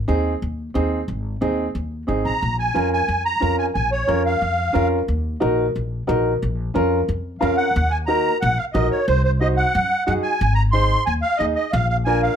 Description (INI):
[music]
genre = latin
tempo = 180 BPM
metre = 4/4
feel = straight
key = Bb minor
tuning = A4 = 440 Hz
[part]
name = warm upright piano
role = accompaniment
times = 0.1-12.3 s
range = C4 to Bb5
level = -22 LUFS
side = equal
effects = none
[part]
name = upright bass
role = bass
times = 0.1-12.3 s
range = Ab1 to Gb2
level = -22 LUFS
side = equal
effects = none
[part]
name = musette accordion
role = melody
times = 2.3-4.9, 7.4-12.4 s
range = C5 to C6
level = -21 LUFS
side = right 1 dB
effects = none
[sound]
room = moderate studio reverb, RT60 0.7 s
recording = none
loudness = -18 LUFS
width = side -8 dB against mid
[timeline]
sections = 0.0-7.7 A section; 7.7-12.4 B section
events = upright piano fill 7.2-7.7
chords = 0.0 Ab; 2.4 Bbm7; 5.1 Ebm; 6.4 Bbm; 7.7 Ebm; 9.1 Cdim; 10.4 Ab; 11.7 Bb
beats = 0.09 0.42 0.75 | 1.09 1.42 1.75 2.09 | 2.42 2.75 3.08 3.42 | 3.75 4.08 4.42 4.75 | 5.08 5.42 5.75 6.08 | 6.41 6.75 7.08 7.41 | 7.74 8.08 8.41 8.74 | 9.07 9.41 9.74 10.07 | 10.41 10.74 11.07 11.40 | 11.74 12.07